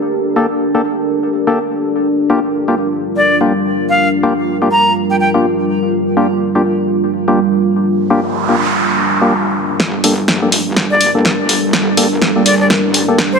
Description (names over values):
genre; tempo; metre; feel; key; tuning
bass house; 124 BPM; 4/4; swing 59% on 16ths; G minor; A4 = 440 Hz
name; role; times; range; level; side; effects
deep dark ambient pad; sustained chords; 0.0-13.4 s; G3 to Bb4; -15 LUFS; right 1 dB; chorus, built-in reverb
percussive organ stab; stabs; 0.4-13.2 s; Bb3 to A4; -18 LUFS; left 2 dB; chorus, digital delay
breathy bright silver concert flute; melody; 3.2-5.3, 10.9-13.4 s; C5 to Bb5; -15 LUFS; left 1 dB; digital delay
noise sweep; sound effects; 8.1-9.8 s; none; -18 LUFS; right 2 dB; none
metallic wobble bass; bass; 9.8-13.1 s; F1 to Bb1; -22 LUFS; equal; chorus, tube saturation, high-pass filter
house drum kit; drums; 9.8-13.3 s; hi-hat, snare drum; -15 LUFS; equal; high-pass filter on cymbals, low-pass filter on cymbals, high-pass filter on snare, low-pass filter on snare, high-pass filter on hats, low-pass filter on hats
room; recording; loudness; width
moderate lush hall reverb, RT60 2.0 s; none; -11 LUFS; side -5 dB against mid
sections
0.0-9.8 A section; 9.8-13.4 B section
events
noise sweep 8.1-9.8; build-up 9.8-13.4; drum fill 9.8-13.4; filter sweep on synth stab 9.8-13.4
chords
0.0 Gmadd9; 2.1 Bb6; 9.8 Gmadd9